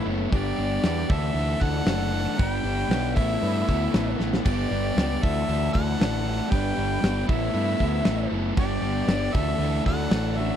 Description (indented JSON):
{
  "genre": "classic rock",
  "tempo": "116 BPM",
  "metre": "4/4",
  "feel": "straight",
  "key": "unclear",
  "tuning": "A4 = 440 Hz",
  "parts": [
    { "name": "clear harmonica", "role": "melody", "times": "0.0-10.6 s", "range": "D5 to G5", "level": "-31 LUFS", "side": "equal", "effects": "none" },
    { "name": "octave-fuzz lead guitar", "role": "second line", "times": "0.0-10.6 s", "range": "E4 to B4", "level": "-36 LUFS", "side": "right 3 dB", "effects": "distortion" },
    { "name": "overdriven tonewheel organ", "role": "sustained chords", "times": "0.0-10.6 s", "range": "D4 to E5", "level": "-40 LUFS", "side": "equal", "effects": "none" },
    { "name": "crunchy overdriven guitar", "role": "riff", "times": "0.0-10.6 s", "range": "D3 to A4", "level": "-29 LUFS", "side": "left 14 dB", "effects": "none" },
    { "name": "crunchy overdriven guitar", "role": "riff", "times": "0.0-10.6 s", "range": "D3 to A4", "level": "-30 LUFS", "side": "right 13 dB", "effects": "none" },
    { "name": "growling picked electric bass", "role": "bass", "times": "0.1-10.5 s", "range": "F#1 to G2", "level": "-28 LUFS", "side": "equal", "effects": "overdrive" },
    { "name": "big rock drum kit", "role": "drums", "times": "0.3-10.2 s", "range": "crash cymbal, hi-hat, kick drum, snare drum", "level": "-24 LUFS", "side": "equal", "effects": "none" }
  ],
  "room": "small room ambience",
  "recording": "dry, close 1970s-style studio recording",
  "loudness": "-22 LUFS",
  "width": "side -9 dB against mid",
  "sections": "0.0-10.6 A section",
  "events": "drum fill 4.2",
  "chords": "0.3 G; 1.1 Dsus2; 2.4 G; 3.2 Asus2; 4.4 G; 5.2 Dsus2; 6.5 G; 7.3 Asus2; 8.6 G; 9.3 Dsus2",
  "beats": "| 0.32 0.83 1.35 1.86 | 2.38 2.90 3.41 3.93 | 4.45 4.96 5.48 5.99 | 6.51 7.02 7.54 8.05 | 8.57 9.09 9.60 10.12"
}